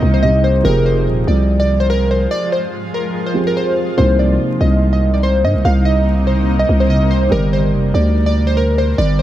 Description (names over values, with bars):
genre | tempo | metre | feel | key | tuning
hip hop | 144 BPM | 4/4 | half-time | C minor | A4 = 445 Hz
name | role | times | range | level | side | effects
glassy digital keys | melody | 0.0-9.2 s | Bb4 to F5 | -18 LUFS | equal | chorus, low-pass filter, tape echo
felt-muted upright piano | accompaniment | 0.0-9.2 s | C3 to D5 | -22 LUFS | right 2 dB | low-pass filter
granular cloud pad | sustained chords | 0.0-9.2 s | C3 to Bb4 | -23 LUFS | equal | built-in reverb
growling 808-style bass | bass | 0.0-9.2 s | Eb1 to G2 | -14 LUFS | equal | none
room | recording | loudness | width
light reverb, digital ambience | dark, warm production, vinyl crackle | -12 LUFS | side -12 dB against mid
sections
0.0-4.0 A section; 4.0-9.2 B section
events
break 2.3-4.0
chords
0.0 Cm7; 0.7 Fmadd9; 4.0 Cm7; 7.3 Gm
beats
0.23 | 0.65 1.07 1.48 1.90 | 2.32 2.73 3.15 3.57 | 3.98 4.40 4.82 5.23 | 5.65 6.07 6.48 6.90 | 7.32 7.73 8.15 8.57 | 8.98